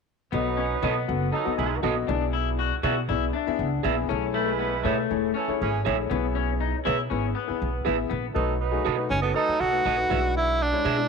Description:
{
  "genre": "soul",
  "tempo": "120 BPM",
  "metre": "4/4",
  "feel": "straight",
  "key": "B mixolydian",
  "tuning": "A4 = 440 Hz",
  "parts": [
    { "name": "mellow horn section", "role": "second line", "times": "0.3-9.8 s", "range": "E3 to B4", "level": "-30 LUFS", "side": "right 11 dB", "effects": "none" },
    { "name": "warm concert grand piano", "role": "accompaniment", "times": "0.3-11.1 s", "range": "G#3 to A5", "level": "-29 LUFS", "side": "left 11 dB", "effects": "none" },
    { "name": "electric guitar through a small old amp", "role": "riff", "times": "0.3-8.2 s", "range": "A3 to F#4", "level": "-30 LUFS", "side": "left 12 dB", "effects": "none" },
    { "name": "upright bass", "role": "bass", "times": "0.3-11.1 s", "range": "E1 to B2", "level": "-29 LUFS", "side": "right 2 dB", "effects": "tube saturation" },
    { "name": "electric guitar through a small old amp", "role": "stabs", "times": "0.8-11.0 s", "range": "F#4 to E5", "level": "-31 LUFS", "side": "right 14 dB", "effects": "none" },
    { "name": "breathy tenor saxophone", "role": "melody", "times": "9.1-11.1 s", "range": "B3 to F#4", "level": "-23 LUFS", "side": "right 2 dB", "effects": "none" }
  ],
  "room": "light reverb, studio ambience",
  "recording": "1960s-style stereo with parts hard left and right",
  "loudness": "-23 LUFS",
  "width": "side -5 dB against mid",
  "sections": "0.3-8.3 A section; 8.3-11.1 B section",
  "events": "grand piano fill 2.8-4.3",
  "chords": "0.3 B7; 2.1 E7/B; 4.1 Amaj7/B; 6.1 C#m7; 8.3 B7; 10.1 E7/B",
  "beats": "| 0.33 0.83 1.34 1.84 | 2.34 2.84 3.34 3.84 | 4.34 4.84 5.35 5.85 | 6.35 6.85 7.35 7.85 | 8.35 8.85 9.35 9.85 | 10.35 10.85"
}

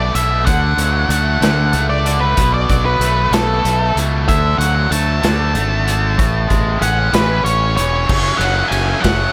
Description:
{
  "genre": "indie rock",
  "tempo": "63 BPM (dotted quarters)",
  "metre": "6/8",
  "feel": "straight",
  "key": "unclear",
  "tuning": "A4 = 440 Hz",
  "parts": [
    { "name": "octave-fuzz lead guitar", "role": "melody", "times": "0.0-9.3 s", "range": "A4 to A5", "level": "-20 LUFS", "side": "equal", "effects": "distortion" },
    { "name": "biting overdriven guitar", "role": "riff", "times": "0.0-9.3 s", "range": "F#2 to C#4", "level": "-23 LUFS", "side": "equal", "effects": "none" },
    { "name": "growling fingered electric bass", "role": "bass", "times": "0.0-9.3 s", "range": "E1 to D2", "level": "-20 LUFS", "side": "equal", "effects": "overdrive" },
    { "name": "loose indie drum kit", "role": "drums", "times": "0.2-9.2 s", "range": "crash cymbal, hi-hat, kick drum, ride cymbal, snare drum", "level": "-22 LUFS", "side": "equal", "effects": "none" }
  ],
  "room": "light reverb, small room ambience",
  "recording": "none",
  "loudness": "-15 LUFS",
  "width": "mono",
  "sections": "0.0-8.1 A section; 8.1-9.3 B section",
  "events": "lead electric guitar solo 0.0-8.1",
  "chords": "0.5 Dmaj7; 2.4 B5; 4.3 D; 6.2 Amaj7; 8.1 F#m",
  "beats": "| 0.46 1.42 | 2.37 3.33 | 4.28 5.23 | 6.18 7.14 | 8.09 9.04"
}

